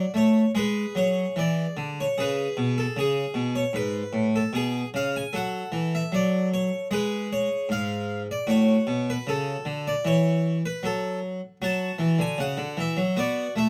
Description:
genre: classical, baroque-style suite movement for harpsichord.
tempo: 76 BPM.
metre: 4/4.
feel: rubato.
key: F# minor.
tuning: A4 = 440 Hz.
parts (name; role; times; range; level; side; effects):
harpsichord; solo; 0.0-13.7 s; G#2 to A5; -26 LUFS; equal; none.
room: light reverb.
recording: close, detailed microphones.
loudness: -26 LUFS.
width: mono.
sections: 0.0-13.7 A section.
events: none.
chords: 0.0 D; 0.5 E; 2.2 C#5; 5.3 F#m; 6.9 N.C.; 8.5 F#m/A; 11.6 F#5; 13.2 Bm.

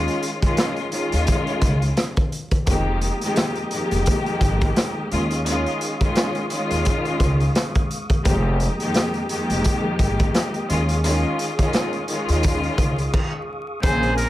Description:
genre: hip hop, boom-bap hip-hop.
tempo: 86 BPM.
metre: 4/4.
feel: swing 56% on 16ths.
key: unclear.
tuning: A4 = 441 Hz.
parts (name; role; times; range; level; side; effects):
warm studio string section; accompaniment; 0.0-14.3 s; F2 to Ab4; -24 LUFS; left 1 dB; high-pass filter, low-pass filter.
upright bass; bass; 0.0-14.2 s; F1 to Eb2; -22 LUFS; equal; none.
raw garage drum kit; drums; 0.1-14.3 s; crash cymbal, hi-hat, kick drum, rim click, snare drum; -22 LUFS; equal; none.
mellow tonewheel organ; sustained chords; 2.7-14.3 s; Ab3 to Eb6; -32 LUFS; right 1 dB; chorus vibrato, stopped rotary speaker, high-pass filter, low-pass filter.
trumpet with metal mute; melody; 13.8-14.3 s; Bb4 to C5; -22 LUFS; equal; high-pass filter, low-pass filter.
room: light reverb.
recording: vinyl crackle.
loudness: -19 LUFS.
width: side -15 dB against mid.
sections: 0.0-13.8 A section.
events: stop 13.1-13.8.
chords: 0.0 Eb9sus4; 2.7 Fm11; 5.1 Eb9sus4; 8.3 Fm11; 10.7 Eb9sus4.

